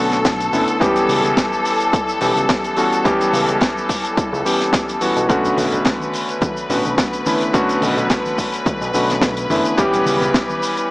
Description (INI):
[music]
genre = nu-disco, nu disco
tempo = 107 BPM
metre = 4/4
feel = swing 55% on 16ths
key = B minor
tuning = A4 = 440 Hz
[part]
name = warm electric grand piano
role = accompaniment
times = 0.0-10.9 s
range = D3 to G4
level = -18 LUFS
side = equal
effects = low-pass filter, digital delay
[part]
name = clear studio string section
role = sustained chords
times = 0.0-10.9 s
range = A4 to B4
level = -22 LUFS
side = left 1 dB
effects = sidechain pumping
[part]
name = fat analog bass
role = bass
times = 0.0-10.3 s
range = F#1 to C#2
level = -24 LUFS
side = equal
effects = none
[part]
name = tight funk drum kit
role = drums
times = 0.1-10.9 s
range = hi-hat, shaker, snare drum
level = -23 LUFS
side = equal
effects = none
[part]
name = electronic kick drum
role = drums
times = 0.2-10.5 s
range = none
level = -21 LUFS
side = equal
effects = overdrive
[part]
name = congas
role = percussion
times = 5.5-10.6 s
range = none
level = -32 LUFS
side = equal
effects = none
[sound]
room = light reverb, small room ambience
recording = small speaker sound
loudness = -15 LUFS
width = side -23 dB against mid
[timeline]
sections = 0.0-10.9 A section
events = none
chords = 0.0 Bm7; 0.8 C#m7b5; 5.3 Bm7; 9.8 C#m7b5